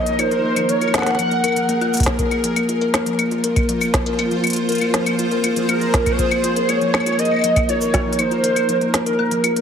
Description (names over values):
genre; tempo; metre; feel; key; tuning
IDM; 120 BPM; 4/4; straight; unclear; A4 = 442 Hz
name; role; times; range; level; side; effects
warbly nostalgic lead; melody; 0.0-1.9, 5.7-9.6 s; Bb4 to Gb5; -20 LUFS; right 2 dB; ensemble chorus, tape echo
granular cloud pad; sustained chords; 0.0-9.6 s; Eb4 to C5; -26 LUFS; equal; built-in reverb, sidechain pumping
kalimba; arpeggios; 0.1-9.6 s; F3 to Bb4; -20 LUFS; left 1 dB; vintage 12-bit sampler grit, ping-pong delay
organic electronic drum kit; drums; 0.1-9.6 s; claves, hi-hat, shaker, snare drum; -22 LUFS; left 2 dB; none
electronic kick drum; drums; 2.0-8.0 s; none; -22 LUFS; equal; overdrive
room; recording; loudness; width
moderate plate reverb, RT60 1.7 s; heavily compressed radio sound; -16 LUFS; side -7 dB against mid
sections
0.0-9.6 A section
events
kick drops out 9.2-9.6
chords
0.0 Eb5; 2.2 Fm; 6.2 Eb5; 8.2 Fmadd11